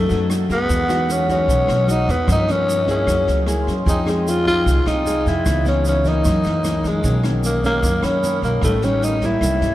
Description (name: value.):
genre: bossa nova.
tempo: 151 BPM.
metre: 4/4.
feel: straight.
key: unclear.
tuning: A4 = 440 Hz.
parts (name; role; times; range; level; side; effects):
growling tenor saxophone; melody; 0.0-9.7 s; Ab3 to F4; -20 LUFS; left 1 dB; none.
nylon-string guitar; accompaniment; 0.0-9.7 s; F#2 to Ab4; -22 LUFS; left 1 dB; none.
upright bass; bass; 0.0-9.7 s; A1 to G2; -22 LUFS; right 1 dB; none.
open jazz drum kit; drums; 0.1-9.7 s; kick drum, rim click, snare drum; -26 LUFS; equal; none.
tube shaker; percussion; 0.1-9.7 s; none; -36 LUFS; right 3 dB; none.
vibraphone with medium hard mallets; accompaniment; 0.7-5.5, 8.0-8.6 s; F5 to D#6; -31 LUFS; right 3 dB; none.
room: wet cathedral reverb, RT60 6.6 s.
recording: in a vast, echoing space.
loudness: -16 LUFS.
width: side -14 dB against mid.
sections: 0.0-9.7 A section.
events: none.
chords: 0.0 B7; 0.7 Emaj9; 2.3 Gm7b5; 3.1 Gb9; 3.9 Fm7; 5.5 Dbm9; 6.2 Gb6; 7.0 Bmaj9; 8.6 A7#11.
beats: 0.30 | 0.70 1.09 1.49 1.89 | 2.28 2.68 3.08 3.47 | 3.87 4.26 4.66 5.06 | 5.45 5.85 6.25 6.64 | 7.04 7.44 7.83 8.23 | 8.63 9.02 9.42.